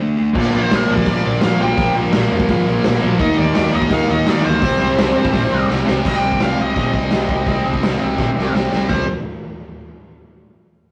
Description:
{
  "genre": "punk rock",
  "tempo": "169 BPM",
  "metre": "4/4",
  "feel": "straight",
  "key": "C minor",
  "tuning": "A4 = 445 Hz",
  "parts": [
    { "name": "sludgy distorted guitar", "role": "riff", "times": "0.0-9.0 s", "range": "Bb2 to Eb4", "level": "-24 LUFS", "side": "equal", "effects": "overdrive" },
    { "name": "crunchy overdriven guitar", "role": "riff", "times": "0.3-6.0 s", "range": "Bb2 to Eb4", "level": "-24 LUFS", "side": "equal", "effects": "none" },
    { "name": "distorted electric guitar", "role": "riff", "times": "0.3-9.0 s", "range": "Bb2 to Eb4", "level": "-25 LUFS", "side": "equal", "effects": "overdrive" },
    { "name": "fuzz picked electric bass", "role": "bass", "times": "0.3-9.1 s", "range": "Ab1 to Eb3", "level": "-26 LUFS", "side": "equal", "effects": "overdrive" },
    { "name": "raw garage drum kit", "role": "drums", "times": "0.3-9.0 s", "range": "crash cymbal, hi-hat, kick drum, snare drum, splash cymbal, toms", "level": "-22 LUFS", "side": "equal", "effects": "none" },
    { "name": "nasal lead guitar with a parked wah", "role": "melody", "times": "0.4-9.1 s", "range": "Bb4 to G5", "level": "-24 LUFS", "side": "equal", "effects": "overdrive" }
  ],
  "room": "wet studio reverb, RT60 0.6 s",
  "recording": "rough rehearsal-room recording, tube saturation, cassette tape",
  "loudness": "-17 LUFS",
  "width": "mono",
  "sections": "0.0-6.0 A section; 6.0-8.9 B section; 8.9-10.3 C section",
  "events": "drum fill 5.7-6.0, 8.2-8.9",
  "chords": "0.0 D5; 0.4 Bb5; 3.2 Eb5; 4.6 C5",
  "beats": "0.00 | 0.35 0.71 1.06 1.42 | 1.78 2.13 2.49 2.84 | 3.20 3.55 3.91 4.26 | 4.62 4.98 5.33 5.69 | 6.04 6.40 6.76 7.11 | 7.47 7.83 8.19 8.54 | 8.90"
}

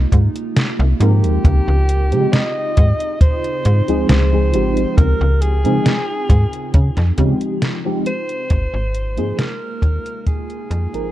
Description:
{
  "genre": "vaporwave",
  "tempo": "68 BPM",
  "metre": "4/4",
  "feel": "straight",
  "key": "unclear",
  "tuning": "A4 = 436 Hz",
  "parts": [
    { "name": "warbly tape-like pad", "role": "sustained chords", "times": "0.0-11.1 s", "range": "C3 to F4", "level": "-29 LUFS", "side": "right 2 dB", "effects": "chorus, built-in reverb, phaser" },
    { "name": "slap-like FM bass", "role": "bass", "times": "0.0-11.1 s", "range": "Ab1 to Db3", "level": "-16 LUFS", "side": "equal", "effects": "none" },
    { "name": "detuned 8-bit digital drum machine", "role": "drums", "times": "0.1-11.1 s", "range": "hi-hat, snare drum", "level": "-20 LUFS", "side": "equal", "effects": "none" },
    { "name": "kick drum", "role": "drums", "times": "0.1-10.5 s", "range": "none", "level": "-14 LUFS", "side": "equal", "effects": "none" },
    { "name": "breathy alto saxophone", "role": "melody", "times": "1.0-11.1 s", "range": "G4 to Eb5", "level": "-24 LUFS", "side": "equal", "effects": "vintage 12-bit sampler grit, tape echo" },
    { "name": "mellow FM electric piano", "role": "accompaniment", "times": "1.0-11.1 s", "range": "F3 to Bb4", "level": "-20 LUFS", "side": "equal", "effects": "tremolo, analog chorus" }
  ],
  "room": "small room ambience",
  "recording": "dark, warm production, cassette tape, lossy compression artefacts",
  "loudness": "-14 LUFS",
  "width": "side -14 dB against mid",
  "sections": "0.0-11.1 A section",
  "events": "fade-out 6.2-11.1",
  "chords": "0.0 Ab69; 1.4 Dbmaj9#11; 8.5 Ab69",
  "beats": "0.56 | 1.45 2.33 3.21 4.09 | 4.98 5.86 6.74 7.62 | 8.51 9.39 10.27"
}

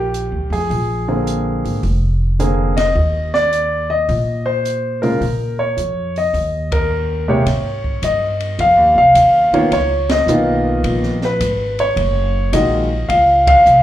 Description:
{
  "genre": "jazz piano trio",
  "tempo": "106 BPM",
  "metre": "4/4",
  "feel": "swing 67% on 8ths",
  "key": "Eb major",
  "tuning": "A4 = 440 Hz",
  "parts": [
    { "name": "warm concert grand piano", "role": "melody", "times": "0.0-13.8 s", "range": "C3 to F5", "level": "-14 LUFS", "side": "equal", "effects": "plate reverb, slapback echo" },
    { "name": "upright bass", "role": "bass", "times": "0.0-13.8 s", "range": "F1 to Bb2", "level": "-20 LUFS", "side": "equal", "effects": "none" },
    { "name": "open jazz drum kit", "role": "drums", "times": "0.1-13.8 s", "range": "hi-hat, kick drum, ride cymbal, snare drum", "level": "-26 LUFS", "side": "equal", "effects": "none" }
  ],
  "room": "light reverb",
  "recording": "live gig heard through the venue's PA, club reverb",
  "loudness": "-14 LUFS",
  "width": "side -12 dB against mid",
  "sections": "0.0-7.5 A section; 7.5-13.8 B section",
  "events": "band accent 2.7, 6.6, 10.0, 13.4",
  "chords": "0.0 Gm7; 0.7 Bb9; 3.0 Eb5; 5.2 Bbm; 6.3 Eb5; 7.5 Abmaj7; 9.7 Db13; 12.0 Gb6",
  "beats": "0.13 | 0.70 1.26 1.83 2.39 | 2.96 3.52 4.08 4.65 | 5.21 5.78 6.34 6.90 | 7.47 8.03 8.59 9.15 | 9.72 10.28 10.84 11.40 | 11.97 12.53 13.09 13.66"
}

